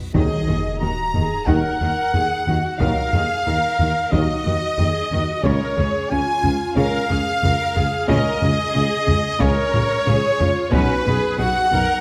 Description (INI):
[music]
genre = cinematic, epic orchestral film score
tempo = 91 BPM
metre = 4/4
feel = straight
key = Eb minor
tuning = A4 = 443 Hz
[part]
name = reverse cymbal and sub drop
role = sound effects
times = 0.0-2.8 s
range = none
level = -33 LUFS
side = equal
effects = none
[part]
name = rich chamber violin section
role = melody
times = 0.1-12.0 s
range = B4 to Bb5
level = -31 LUFS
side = equal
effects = none
[part]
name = warm symphonic violin section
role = second line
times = 0.1-12.0 s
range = B4 to Bb5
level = -31 LUFS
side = equal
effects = none
[part]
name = warm symphonic viola section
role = accompaniment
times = 0.1-12.0 s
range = F4 to Bb4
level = -30 LUFS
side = equal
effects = none
[part]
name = mellow French horn section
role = sustained chords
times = 0.1-11.0 s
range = Gb3 to Eb4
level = -32 LUFS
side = equal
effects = none
[part]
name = dark trumpet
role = stabs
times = 0.1-12.0 s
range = B4 to Bb5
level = -25 LUFS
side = equal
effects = none
[part]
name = mellow tuba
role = bass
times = 0.1-11.9 s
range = B1 to Eb2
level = -29 LUFS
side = equal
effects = none
[part]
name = warm symphonic cello section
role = bass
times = 0.1-11.8 s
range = B2 to Eb3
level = -29 LUFS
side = equal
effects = none
[part]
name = warm symphonic double bass section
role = bass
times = 0.1-11.8 s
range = B1 to Eb2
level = -29 LUFS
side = equal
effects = none
[part]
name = taiko ensemble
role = drums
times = 0.1-12.0 s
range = none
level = -26 LUFS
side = equal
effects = none
[part]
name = timpani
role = percussion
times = 0.1-1.1 s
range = Eb3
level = -29 LUFS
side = equal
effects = none
[sound]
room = moderate scoring stage reverb, RT60 1.7 s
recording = none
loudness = -20 LUFS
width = mono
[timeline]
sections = 0.1-12.0 A section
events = impact 0.1-2.8; drum fill 9.7-10.7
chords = 0.1 Ebm; 5.4 Db; 10.7 Bsus2